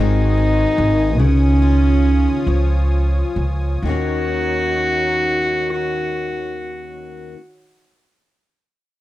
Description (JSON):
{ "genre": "acoustic folk-pop ballad", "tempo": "43-50 BPM (dotted quarters)", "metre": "6/8", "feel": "straight", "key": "Eb dorian", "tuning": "A4 = 440 Hz", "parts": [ { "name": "dark cello", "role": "melody", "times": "0.0-7.3 s", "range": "Db4 to Gb4", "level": "-20 LUFS", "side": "right 1 dB", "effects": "none" }, { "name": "fingerpicked steel-string acoustic guitar", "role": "accompaniment", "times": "0.0-7.4 s", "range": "Eb2 to Ab4", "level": "-25 LUFS", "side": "left 9 dB", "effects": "none" }, { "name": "warm analog pad", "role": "sustained chords", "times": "0.0-7.3 s", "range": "Eb3 to Eb6", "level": "-30 LUFS", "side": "equal", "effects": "chorus" }, { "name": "upright bass", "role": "bass", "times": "0.0-7.3 s", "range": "Ab1 to Eb2", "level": "-18 LUFS", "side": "right 1 dB", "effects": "none" } ], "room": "light reverb", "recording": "dry, close 1970s-style studio recording", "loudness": "-15 LUFS", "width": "side -15 dB against mid", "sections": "0.0-3.8 A section; 3.8-6.6 B section", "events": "slowing down 0.0-3.8", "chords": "0.0 Ab7; 1.2 Dbadd9; 3.8 Ebm7", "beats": "| 1.19 2.47 | 3.83 5.23" }